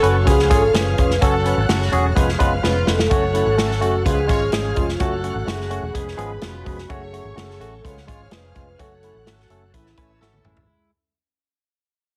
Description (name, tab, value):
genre	uptempo 1960s-style soul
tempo	127 BPM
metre	4/4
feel	straight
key	unclear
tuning	A4 = 440 Hz
part	vibraphone with soft mallets	melody	0.0-10.2 s	E4 to C#5	-26 LUFS	equal	none
part	warm horn section	second line	0.0-10.5 s	C#3 to C#5	-31 LUFS	equal	none
part	warm studio violin section	second line	0.0-10.7 s	B4 to F#6	-35 LUFS	equal	plate reverb
part	barky tine electric piano	accompaniment	0.0-10.6 s	E#3 to B4	-27 LUFS	equal	overdrive
part	overdriven tonewheel organ	sustained chords	0.0-10.7 s	E3 to B4	-34 LUFS	equal	none
part	vintage muted fingered electric bass	bass	0.0-10.7 s	E1 to C#2	-26 LUFS	equal	none
part	natural country drum kit	drums	0.0-10.7 s	hi-hat, kick drum, snare drum, toms	-24 LUFS	equal	none
part	clean electric guitar	riff	10.0-10.9 s	G#3 to B4	-69 LUFS	equal	none
room	light reverb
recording	heavily compressed radio sound, multiband compression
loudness	-19 LUFS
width	mono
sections	0.0-10.7 A section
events	fade-out 0.0-10.7; drum fill 2.6-3.1, 10.2-10.7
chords	0.3 C#; 1.2 F#m; 2.2 C#7/E#; 3.1 F#m; 4.1 C#; 5.0 F#m; 6.0 C#7/E#; 6.9 F#m; 7.8 C#; 8.8 F#m; 9.7 A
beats	0.27 0.74 | 1.21 1.69 2.16 2.63 | 3.11 3.58 4.06 4.53 | 5.00 5.48 5.95 6.42 | 6.90 7.37 7.84 8.32 | 8.79 9.27 9.74 10.21